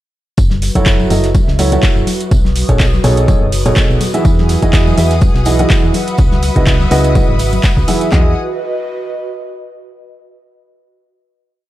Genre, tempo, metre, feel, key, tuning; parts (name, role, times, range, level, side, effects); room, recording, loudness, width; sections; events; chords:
piano house; 124 BPM; 4/4; swing 55% on 16ths; E major; A4 = 439 Hz
solid FM bass; bass; 0.4-8.3 s; F#1 to E2; -15 LUFS; equal; sidechain pumping
garage drum kit; drums; 0.4-8.1 s; handclaps, hi-hat; -21 LUFS; right 1 dB; overdrive
gated 80s drum kit; drums; 0.4-8.0 s; hi-hat, snare drum, tambourine; -30 LUFS; right 1 dB; high-pass filter on hats, high-pass filter on snare, high-pass filter on perc, high-pass filter on room
punchy analog drum machine; drums; 0.4-8.2 s; handclaps, kick drum, snare drum; -12 LUFS; equal
tambourine and congas; percussion; 0.4-8.1 s; -23 LUFS; left 5 dB
airy breathy pad; texture; 0.4-10.0 s; F#4 to D#6; -24 LUFS; right 1 dB; chorus, sidechain pumping
warm upright piano; riff; 0.8-8.4 s; B2 to E5; -16 LUFS; right 2 dB; sidechain pumping, digital delay
rich studio string section; sustained chords; 4.2-8.3 s; G#4 to D#6; -24 LUFS; left 1 dB; vintage 12-bit sampler grit, sidechain pumping
small room ambience; dark, warm production; -10 LUFS; side -14 dB against mid
0.4-8.1 groove; 8.1-10.1 final chord
0.4 F#m7; 2.1 B13; 4.0 Emaj9; 5.9 C#m11; 8.1 Emaj9